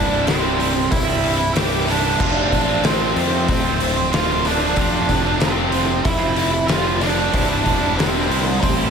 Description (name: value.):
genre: quiet-loud alternative rock.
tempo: 93 BPM.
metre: 4/4.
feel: straight.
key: unclear.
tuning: A4 = 439 Hz.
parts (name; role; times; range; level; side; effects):
octave-fuzz lead guitar; melody; 0.0-8.9 s; C4 to G5; -21 LUFS; right 3 dB; distortion, slapback echo, analog delay.
heavy high-gain guitar; riff; 0.0-8.9 s; C2 to F3; -26 LUFS; left 1 dB; none.
scooped high-gain guitar; riff; 0.0-8.9 s; C2 to F4; -26 LUFS; left 13 dB; distortion, slapback echo.
tight distorted guitar; riff; 0.0-8.9 s; C2 to F4; -26 LUFS; right 10 dB; distortion, slapback echo.
fuzz fingered electric bass; bass; 0.0-8.9 s; C1 to F2; -24 LUFS; left 1 dB; overdrive.
oversized low-tuned drum kit; drums; 0.3-8.8 s; crash cymbal, hi-hat, kick drum, snare drum; -21 LUFS; left 1 dB; none.
room: moderate lush hall reverb, RT60 2.7 s.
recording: big arena sound.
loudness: -16 LUFS.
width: side -6 dB against mid.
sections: 0.0-8.9 A section.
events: none.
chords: 0.0 C; 2.2 F; 7.3 C.